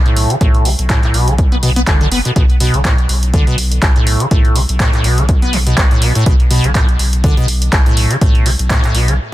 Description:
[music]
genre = acid house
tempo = 123 BPM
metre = 4/4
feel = swing 56% on 16ths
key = B minor pentatonic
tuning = A4 = 442 Hz
[part]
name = warm sub bass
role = bass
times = 0.0-9.2 s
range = F#1 to B1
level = -16 LUFS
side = equal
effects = sidechain pumping
[part]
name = acid bass, square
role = riff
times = 0.1-9.1 s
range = A2 to B3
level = -16 LUFS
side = equal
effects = lush chorus, sidechain pumping, tape echo
[part]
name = punchy analog drum machine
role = drums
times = 0.1-9.2 s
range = handclaps, hi-hat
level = -19 LUFS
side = equal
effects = none
[part]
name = electronic kick drum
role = drums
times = 0.4-8.8 s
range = none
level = -13 LUFS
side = equal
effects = none
[sound]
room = little or no reverb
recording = dense, heavily limited modern master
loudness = -10 LUFS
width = side -15 dB against mid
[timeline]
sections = 0.0-9.3 A section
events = none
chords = 0.0 B7(no3)

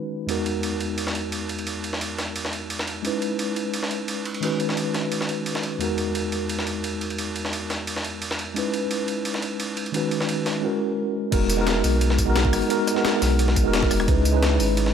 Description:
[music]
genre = liquid drum and bass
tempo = 174 BPM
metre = 4/4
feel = straight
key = E lydian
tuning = A4 = 442 Hz
[part]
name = mellow tine electric piano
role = accompaniment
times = 0.0-14.9 s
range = E2 to B4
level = -24 LUFS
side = equal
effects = medium stereo tremolo, vintage 12-bit sampler grit, ping-pong delay
[part]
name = breakbeat sampler-style drum kit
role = drums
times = 0.3-14.9 s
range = ride cymbal, snare drum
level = -28 LUFS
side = right 2 dB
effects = high-pass filter on cymbals, high-pass filter on snare
[part]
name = sub bass with octave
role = bass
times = 11.3-14.9 s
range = E1 to C#2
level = -22 LUFS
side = equal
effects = none
[part]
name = breakbeat sampler-style drum kit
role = drums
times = 11.3-14.8 s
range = crash cymbal, hi-hat, rim click, snare drum, tambourine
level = -29 LUFS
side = equal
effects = low-pass filter on hats, low-pass filter on cymbals, low-pass filter on perc, low-pass filter on snare
[part]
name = electronic kick drum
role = drums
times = 11.3-14.2 s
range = none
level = -24 LUFS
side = equal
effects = overdrive
[sound]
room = moderate lush hall reverb, RT60 2.0 s, digital ambience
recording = none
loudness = -22 LUFS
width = side -8 dB against mid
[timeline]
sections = 0.0-11.3 A section; 11.3-14.9 B section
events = drop 11.3-14.9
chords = 0.3 Emaj9#11; 3.0 C#m9; 4.4 B6/D#; 5.8 Emaj9#11; 8.6 C#m9; 9.9 B6/D#; 10.6 F#9; 11.3 Emaj9#11; 14.1 C#m9

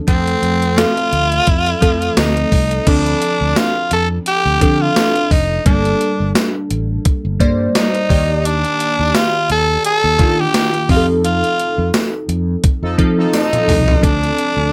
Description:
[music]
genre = 1980s-style pop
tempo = 86 BPM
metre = 4/4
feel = swing 55% on 16ths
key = unclear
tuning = A4 = 439 Hz
[part]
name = glassy digital keys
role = accompaniment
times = 0.0-14.7 s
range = Eb3 to D5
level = -22 LUFS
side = equal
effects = chorus
[part]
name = breathy tenor saxophone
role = melody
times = 0.1-14.7 s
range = C4 to A4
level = -19 LUFS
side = equal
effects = none
[part]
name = fretless electric bass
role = bass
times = 0.1-14.7 s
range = F1 to F3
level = -22 LUFS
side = equal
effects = none
[part]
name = gated 80s digital drum machine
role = drums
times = 0.1-14.6 s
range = crash cymbal, hi-hat, kick drum, snare drum, tambourine, toms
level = -18 LUFS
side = equal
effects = gated reverb, gated reverb snare
[part]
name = tambourine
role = percussion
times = 0.8-13.5 s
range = none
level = -36 LUFS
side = equal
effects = none
[part]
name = analog synth brass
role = stabs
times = 12.8-13.7 s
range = F3 to A4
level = -24 LUFS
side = equal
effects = chorus
[sound]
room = light reverb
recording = none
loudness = -15 LUFS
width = mono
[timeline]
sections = 0.0-2.9 A section; 2.9-14.7 B section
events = band accent 11.2-14.0; drum fill 13.3-14.0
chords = 0.1 F; 2.9 Dm7; 5.7 Gmadd9; 8.1 Ebmaj7; 10.9 F7; 14.0 Dm7

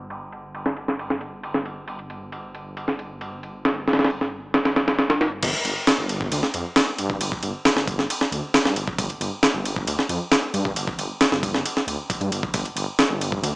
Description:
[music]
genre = breakbeat, breaks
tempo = 135 BPM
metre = 4/4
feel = straight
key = unclear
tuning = A4 = 440 Hz
[part]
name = detuned saw bass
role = bass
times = 0.0-13.5 s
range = G1 to G2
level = -30 LUFS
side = equal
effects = none
[part]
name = breakbeat sampler-style drum kit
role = drums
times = 0.1-13.5 s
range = crash cymbal, kick drum, ride cymbal, snare drum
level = -21 LUFS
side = equal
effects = low-pass filter on cymbals, studio reverb, low-pass filter on snare, low-pass filter on kick
[sound]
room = light reverb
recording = low-pass filter, small speaker sound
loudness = -20 LUFS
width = side -24 dB against mid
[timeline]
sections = 0.0-5.4 A section; 5.4-13.6 B section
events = filter sweep 0.0-5.4; drop 5.4-13.6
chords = none

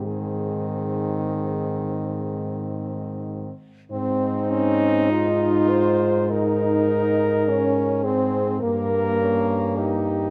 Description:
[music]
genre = classical, lyrical piece for horn quartet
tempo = 45-53 BPM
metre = 4/4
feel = rubato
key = Ab major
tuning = A4 = 440 Hz
[part]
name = mellow French horn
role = melody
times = 0.0-10.3 s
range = Eb4 to C5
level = -27 LUFS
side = equal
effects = none
[part]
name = mellow French horn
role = second line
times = 0.0-10.3 s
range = Bb3 to F4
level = -30 LUFS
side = equal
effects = none
[part]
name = warm French horn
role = accompaniment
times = 0.0-10.3 s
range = Eb3 to Eb4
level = -29 LUFS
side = equal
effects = none
[part]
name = dark French horn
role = bass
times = 0.0-10.3 s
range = G2 to Ab2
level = -29 LUFS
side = equal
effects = none
[sound]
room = light reverb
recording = close, detailed microphones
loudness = -22 LUFS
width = mono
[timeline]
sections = 0.0-3.9 A section; 3.9-10.3 B section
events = none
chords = 0.0 Ab; 8.6 Gdim

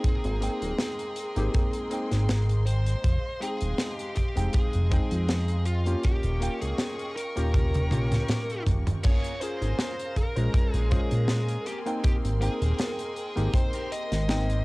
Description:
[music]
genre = vaporwave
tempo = 80 BPM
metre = 4/4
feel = swing 53% on 16ths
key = Bb dorian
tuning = A4 = 441 Hz
[part]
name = bluesy overdriven lead guitar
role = melody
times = 0.0-14.6 s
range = F4 to Eb5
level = -34 LUFS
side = equal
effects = distortion, tape echo
[part]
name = warm electric grand piano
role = accompaniment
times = 0.0-14.6 s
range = Ab3 to G5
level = -34 LUFS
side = left 1 dB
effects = analog chorus, cassette tape
[part]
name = rich symphonic string section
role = sustained chords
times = 0.0-14.6 s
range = Ab3 to Db6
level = -40 LUFS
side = right 1 dB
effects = cassette tape
[part]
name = chorused synth bass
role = bass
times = 0.0-14.6 s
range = Eb1 to Bb2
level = -26 LUFS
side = equal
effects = none
[part]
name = kick drum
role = drums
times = 0.0-13.7 s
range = none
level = -25 LUFS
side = equal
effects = cassette tape
[part]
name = modern studio drum kit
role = drums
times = 0.0-14.6 s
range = crash cymbal, hi-hat, snare drum, toms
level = -31 LUFS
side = equal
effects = cassette tape
[part]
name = clean electric guitar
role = riff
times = 9.0-14.2 s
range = Bb3 to Bb4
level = -40 LUFS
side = left 1 dB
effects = lush chorus, vintage 12-bit sampler grit, cassette tape, tape echo
[sound]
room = light reverb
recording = home recording on cassette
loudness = -24 LUFS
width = side -23 dB against mid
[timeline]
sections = 0.0-9.0 A section; 9.0-14.6 B section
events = drum fill 7.5-9.0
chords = 0.0 Abmaj9; 3.0 Fm7; 6.0 Eb7; 9.0 Bbm7; 11.7 Abmaj9

